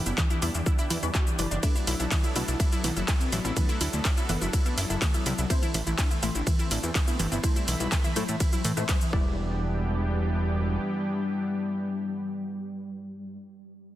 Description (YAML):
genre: melodic techno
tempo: 124 BPM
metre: 4/4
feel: straight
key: E minor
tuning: A4 = 441 Hz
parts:
  - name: soft octave-layered synth lead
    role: melody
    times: 0.0-13.4 s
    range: E3 to F#4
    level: -33 LUFS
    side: left 1 dB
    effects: chorus, phaser, sidechain pumping, tape echo
  - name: lush unison pad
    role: sustained chords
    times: 0.0-13.4 s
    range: E3 to B5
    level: -37 LUFS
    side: equal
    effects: chorus, sidechain pumping
  - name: analog pluck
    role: arpeggios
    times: 0.0-9.6 s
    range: D4 to B5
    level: -35 LUFS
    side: right 1 dB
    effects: chorus, sidechain pumping, dub echo
  - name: filtered dub chord stab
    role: stabs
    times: 0.0-13.4 s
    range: G3 to D5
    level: -38 LUFS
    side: left 3 dB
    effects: phaser, wide subtle chorus, sidechain pumping, dub echo
  - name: fat analog bass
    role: bass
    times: 0.1-10.8 s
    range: E1 to A2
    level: -29 LUFS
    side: equal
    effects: sidechain pumping
  - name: house drum kit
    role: drums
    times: 0.1-9.1 s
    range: congas, handclaps, hi-hat, ride cymbal, shaker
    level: -31 LUFS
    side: right 1 dB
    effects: overdrive
  - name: electronic kick drum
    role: drums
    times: 0.2-9.2 s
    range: none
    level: -25 LUFS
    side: equal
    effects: overdrive
room: light reverb, digital ambience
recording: dense, heavily limited modern master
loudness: -24 LUFS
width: side -14 dB against mid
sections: 0.0-9.4 A section; 9.4-13.2 B section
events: drop 0.0-9.4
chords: 0.0 Em7; 1.6 Bm7; 5.5 Am; 9.1 Em7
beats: 0.18 0.66 1.15 | 1.63 2.11 2.60 3.08 | 3.57 4.05 4.53 5.02 | 5.50 5.99 6.47 6.95 | 7.44 7.92 8.40 8.89 | 9.37 9.86 10.34 10.82 | 11.31 11.79 12.28 12.76